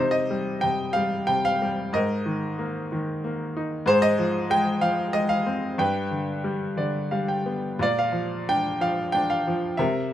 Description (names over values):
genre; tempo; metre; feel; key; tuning
classical, lyrical solo piano; 92 BPM; 3/4; rubato; unclear; A4 = 441 Hz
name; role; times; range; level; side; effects
bright baby grand piano; solo; 0.0-10.1 s; G2 to G5; -22 LUFS; equal; none
room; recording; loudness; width
moderate studio reverb, RT60 0.6 s; none; -22 LUFS; side -11 dB against mid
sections
0.0-10.1 A section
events
grand piano fill 6.4-7.8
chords
0.0 Cm; 2.0 Absus2; 3.9 Fm/Ab; 5.8 G; 7.8 Bb